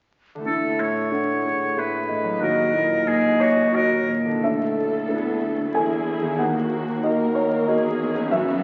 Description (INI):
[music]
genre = cinematic, emotional film score for orchestra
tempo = 92 BPM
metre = 3/4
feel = rubato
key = unclear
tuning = A4 = 440 Hz
[part]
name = concert harp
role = arpeggios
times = 0.3-8.6 s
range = F#2 to D#5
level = -34 LUFS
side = equal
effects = none
[part]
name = clear oboe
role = second line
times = 0.5-4.1 s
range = F#4 to C#5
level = -27 LUFS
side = equal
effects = none
[part]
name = mellow hollow concert flute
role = second line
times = 0.5-4.1 s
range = C#5 to F#5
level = -28 LUFS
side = equal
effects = none
[part]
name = warm clarinet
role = second line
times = 0.5-4.1 s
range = D#4 to A4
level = -33 LUFS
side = equal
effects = none
[part]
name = warm baby grand piano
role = accompaniment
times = 0.5-8.6 s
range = D2 to G#5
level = -25 LUFS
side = equal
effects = none
[part]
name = rich studio viola section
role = accompaniment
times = 4.4-8.6 s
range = A3 to A#4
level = -29 LUFS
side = equal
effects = none
[part]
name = warm studio cello section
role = bass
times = 4.4-8.6 s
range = D2 to F#2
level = -33 LUFS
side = equal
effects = none
[sound]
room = wet scoring stage reverb, RT60 1.8 s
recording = very old 78 rpm record, vinyl crackle, nothing above 7.5 kHz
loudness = -22 LUFS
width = mono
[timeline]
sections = 0.5-4.4 A section; 4.4-8.6 B section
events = none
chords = 0.5 Dsus2; 2.4 D#m; 4.4 Dsus2; 6.4 D#m